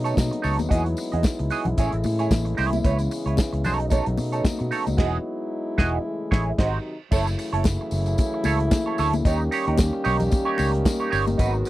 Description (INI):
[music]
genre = disco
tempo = 112 BPM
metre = 4/4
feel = swing 56% on 16ths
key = unclear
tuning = A4 = 440 Hz
[part]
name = semi-hollow electric guitar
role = accompaniment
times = 0.0-11.7 s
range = D#4 to D#5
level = -26 LUFS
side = right 5 dB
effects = wah, wide subtle chorus
[part]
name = mellow French horn section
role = sustained chords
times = 0.0-11.7 s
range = B#2 to G4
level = -28 LUFS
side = left 1 dB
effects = none
[part]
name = fingered electric bass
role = bass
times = 0.0-11.6 s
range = E1 to B2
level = -25 LUFS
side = equal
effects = none
[part]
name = warm soul drum kit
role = drums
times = 0.1-11.7 s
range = crash cymbal, hi-hat, kick drum, snare drum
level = -21 LUFS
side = equal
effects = none
[part]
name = tambourine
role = percussion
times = 0.1-11.7 s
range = none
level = -40 LUFS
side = left 6 dB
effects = none
[part]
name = congas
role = percussion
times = 0.2-11.4 s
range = none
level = -31 LUFS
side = left 5 dB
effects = none
[sound]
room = little or no reverb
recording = dry, close 1970s-style studio recording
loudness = -21 LUFS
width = side -16 dB against mid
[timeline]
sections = 0.0-7.1 A section; 7.1-11.7 B section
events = band accent 5.0-7.1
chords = 0.0 B9; 0.7 Emaj9; 1.8 Amaj7; 2.8 C#m7; 3.6 B9; 5.0 Emaj9; 6.1 Amaj7; 6.6 G#7; 7.1 F#m7; 9.3 D#7